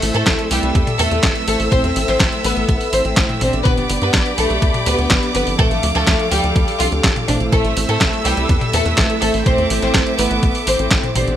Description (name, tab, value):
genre	italo disco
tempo	124 BPM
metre	4/4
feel	straight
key	A minor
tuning	A4 = 440 Hz
part	warm chamber violin section	melody	0.0-11.3 s	G3 to C5	-20 LUFS	left 1 dB	ping-pong delay
part	warm studio string section	sustained chords	0.0-11.4 s	G4 to E6	-22 LUFS	equal	none
part	mellow synth brass	stabs	0.0-11.4 s	F3 to D5	-24 LUFS	right 2 dB	chorus
part	tight sequencer bass	bass	0.0-11.4 s	G1 to A2	-21 LUFS	equal	none
part	detuned 8-bit digital drum machine	drums	0.0-11.4 s	handclaps, hi-hat, snare drum, toms	-20 LUFS	equal	studio reverb
part	electronic kick drum	drums	0.3-11.0 s	none	-18 LUFS	equal	studio reverb
room	light reverb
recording	bright 1980s-style digital production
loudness	-14 LUFS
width	side -10 dB against mid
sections	0.0-11.4 A section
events	none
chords	0.0 Am; 3.7 G; 5.6 Dm7; 7.5 Am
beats	0.27 0.75 1.24 | 1.72 2.20 2.69 3.17 | 3.65 4.14 4.62 5.11 | 5.59 6.07 6.56 7.04 | 7.53 8.01 8.49 8.98 | 9.46 9.94 10.43 10.91